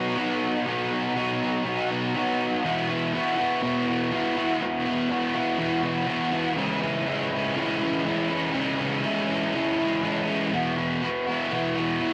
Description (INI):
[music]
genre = rock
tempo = 122 BPM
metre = 4/4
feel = straight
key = E major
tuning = A4 = 440 Hz
[part]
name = crunchy overdriven guitar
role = solo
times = 0.0-12.1 s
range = E2 to F#4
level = -26 LUFS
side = equal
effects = lush chorus, cassette tape
[sound]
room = light reverb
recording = home recording on cassette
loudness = -26 LUFS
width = mono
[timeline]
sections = 0.0-2.6 A section; 2.6-12.1 B section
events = none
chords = 0.0 B; 2.6 Esus2; 6.6 C#m; 10.5 Esus2